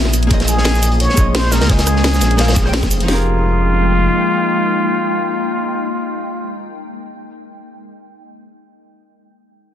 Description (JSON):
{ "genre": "liquid drum and bass", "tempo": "173 BPM", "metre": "4/4", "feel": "swing 54% on 16ths", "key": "F minor", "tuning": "A4 = 440 Hz", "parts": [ { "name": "hollow-body jazz guitar", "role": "accompaniment", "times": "0.0-7.3 s", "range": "Db3 to G5", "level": "-22 LUFS", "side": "equal", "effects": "ping-pong delay" }, { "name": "glassy FM pad", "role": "sustained chords", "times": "0.0-6.6 s", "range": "Ab3 to Eb6", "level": "-22 LUFS", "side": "left 1 dB", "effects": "ensemble chorus, built-in reverb, sidechain pumping" }, { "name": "dark detuned saw bass", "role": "bass", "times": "0.0-4.1 s", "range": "F1 to Db2", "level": "-16 LUFS", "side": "equal", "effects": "none" }, { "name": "crunchy breakbeat drum kit", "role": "drums", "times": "0.1-3.1 s", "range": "hi-hat, snare drum", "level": "-22 LUFS", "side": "equal", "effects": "high-pass filter on hats, high-pass filter on snare, high-pass filter on room" }, { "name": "drum and bass drum kit", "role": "drums", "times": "0.1-3.1 s", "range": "cabasa, hi-hat, rim click, snare drum", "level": "-20 LUFS", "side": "equal", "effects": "none" }, { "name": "drum and bass drum kit", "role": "drums", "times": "0.3-3.2 s", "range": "kick drum, snare drum", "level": "-16 LUFS", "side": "equal", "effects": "none" }, { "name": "trumpet with plunger mute", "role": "melody", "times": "0.5-6.6 s", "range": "F4 to Db5", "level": "-20 LUFS", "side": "equal", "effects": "ping-pong delay" } ], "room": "light reverb", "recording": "dense, heavily limited modern master", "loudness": "-13 LUFS", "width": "side -10 dB against mid", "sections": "0.0-3.1 A section; 3.1-5.9 B section", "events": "drop 0.0-3.1", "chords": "0.1 Bbm11; 3.1 Fm11" }